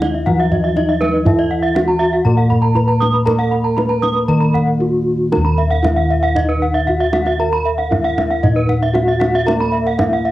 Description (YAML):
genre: Balinese gamelan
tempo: 117 BPM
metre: 4/4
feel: uneven beats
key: Eb pelog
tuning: A4 = 439 Hz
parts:
  - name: gamelan-type bronze metallophone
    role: melody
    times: 0.0-10.3 s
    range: Eb4 to Cb5-20c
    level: -20 LUFS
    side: left 1 dB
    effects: cassette tape
  - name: gamelan-type bronze metallophone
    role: accompaniment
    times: 0.0-5.3, 9.5-10.3 s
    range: Eb3 to Bb3-30c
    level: -22 LUFS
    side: equal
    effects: none
  - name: gamelan-type bronze metallophone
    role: arpeggios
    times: 0.0-10.3 s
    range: Cb5-20c to Eb6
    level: -20 LUFS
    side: right 4 dB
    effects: none
  - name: gamelan-type bossed gongs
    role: bass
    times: 0.0-10.3 s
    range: Eb2 to Bb4-30c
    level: -18 LUFS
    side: equal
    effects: none
  - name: kendang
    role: percussion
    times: 0.0-10.1 s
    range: none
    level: -22 LUFS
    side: right 1 dB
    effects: none
  - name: gamelan-type bronze metallophone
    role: arpeggios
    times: 0.1-10.3 s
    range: Eb5 to Cb6-20c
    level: -22 LUFS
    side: left 4 dB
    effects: none
room: light reverb, small room ambience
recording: home recording on cassette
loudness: -13 LUFS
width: side -15 dB against mid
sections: 0.0-5.3 A section; 5.3-10.3 B section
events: drum fill 4.7-5.3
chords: none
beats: 0.27 0.76 | 1.26 1.75 2.25 2.75 | 3.26 3.77 4.28 4.79 | 5.31 5.83 6.35 6.87 | 7.39 7.91 8.43 8.95 | 9.47 9.99